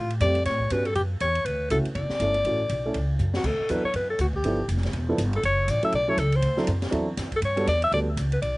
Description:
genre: jazz, small-group swing and bop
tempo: 242 BPM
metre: 4/4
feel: swing 59% on 8ths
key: D major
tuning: A4 = 440 Hz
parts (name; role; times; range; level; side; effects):
- breathy alto saxophone; melody; 0.0-8.6 s; F4 to E5; -25 LUFS; left 1 dB; slapback echo
- upright bass; bass; 0.0-8.6 s; E1 to A2; -26 LUFS; equal; none
- open jazz drum kit; drums; 0.1-8.5 s; crash cymbal, hi-hat, kick drum, ride cymbal, snare drum; -36 LUFS; equal; none
- dark upright piano; accompaniment; 0.2-8.1 s; F3 to A4; -29 LUFS; right 2 dB; slapback echo
room: little or no reverb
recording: nothing above 10.8 kHz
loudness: -22 LUFS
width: side -22 dB against mid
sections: 0.0-3.4 A section; 3.4-8.6 B section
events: drum fill 3.2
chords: 0.5 A13; 1.5 Dmaj7; 3.4 D6; 4.4 G13; 5.4 F#m7; 6.4 D7; 7.4 Gmaj9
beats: 0.21 | 0.46 0.71 0.96 1.21 | 1.46 1.70 1.95 2.20 | 2.45 2.70 2.95 3.20 | 3.44 3.69 3.94 4.19 | 4.44 4.69 4.93 5.18 | 5.43 5.68 5.93 6.18 | 6.43 6.67 6.92 7.17 | 7.42 7.67 7.92 8.16 | 8.41

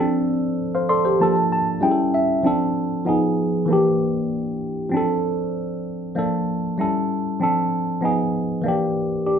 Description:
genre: soul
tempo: 97 BPM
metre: 4/4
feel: straight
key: unclear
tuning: A4 = 440 Hz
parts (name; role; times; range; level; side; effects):
- tine electric piano; solo; 0.0-9.4 s; E3 to C6; -19 LUFS; equal; phaser
room: moderate large studio reverb, RT60 0.8 s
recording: band playing live in one room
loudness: -19 LUFS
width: side -7 dB against mid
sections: 0.0-9.4 A section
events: tine electric piano fill 0.6-2.4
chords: 0.0 F6; 1.2 Bbmaj7; 1.8 A7; 2.4 Dm7; 3.1 Fm7b5; 3.7 Em7b5; 4.9 F6; 6.2 Bbmaj7; 6.8 A7; 7.4 Dm7; 8.0 Fm7b5; 8.7 Em7b5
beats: 0.59 1.21 1.83 | 2.45 3.07 3.69 4.31 | 4.93 5.55 6.17 6.79 | 7.41 8.03 8.65 9.27

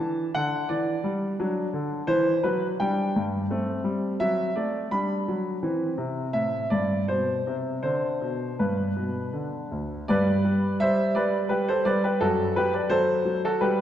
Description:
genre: classical-period piano sonatina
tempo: 78-87 BPM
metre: 3/4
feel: rubato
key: G major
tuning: A4 = 440 Hz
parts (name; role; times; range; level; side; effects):
- clear concert grand piano; solo; 0.0-13.8 s; D2 to B5; -23 LUFS; equal; none
room: wet concert hall reverb, RT60 1.9 s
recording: dark, warm production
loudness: -23 LUFS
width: side -10 dB against mid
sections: 0.0-10.1 A section; 10.1-13.8 B section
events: none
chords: 0.0 D; 2.8 G5; 3.5 F#dim; 4.9 G; 5.6 C; 7.8 G; 9.3 N.C.; 10.1 G; 12.2 F#dim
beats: 0.69 | 1.38 2.07 2.80 | 3.50 4.20 4.92 | 5.63 6.34 7.08 | 7.83 8.58 9.34 | 10.09 10.80 11.51 | 12.22 12.92 13.63

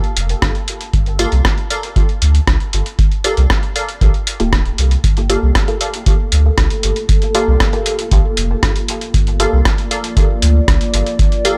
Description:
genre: dub techno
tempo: 117 BPM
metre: 4/4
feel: straight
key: G minor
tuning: A4 = 437 Hz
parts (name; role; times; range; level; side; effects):
- filtered dub chord stab; stabs; 0.0-11.6 s; Bb3 to A4; -26 LUFS; equal; phaser, sidechain pumping, dub echo
- lo-fi sampler-style drum kit; drums; 0.0-11.6 s; hi-hat, rim click; -22 LUFS; equal; none
- soft dub sub bass; bass; 0.2-11.0 s; D1 to D2; -17 LUFS; equal; tube saturation, sidechain pumping
- electronic kick drum; drums; 0.4-11.3 s; none; -18 LUFS; equal; none
- wavetable chord stab; riff; 1.2-11.5 s; A4 to F5; -28 LUFS; equal; sidechain pumping, dub echo
- deep dark ambient pad; sustained chords; 6.2-11.6 s; Bb3 to D5; -25 LUFS; equal; chorus, built-in reverb, sidechain pumping
room: digital ambience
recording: none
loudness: -15 LUFS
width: mono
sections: 0.0-5.0 A section; 5.0-11.6 A section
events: filter sweep on synth stab 0.0-5.0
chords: 0.0 Gm9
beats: 0.42 | 0.94 1.45 1.96 2.48 | 2.99 3.50 4.01 4.53 | 5.04 5.55 6.07 6.58 | 7.09 7.60 8.12 8.63 | 9.14 9.65 10.17 10.68 | 11.19

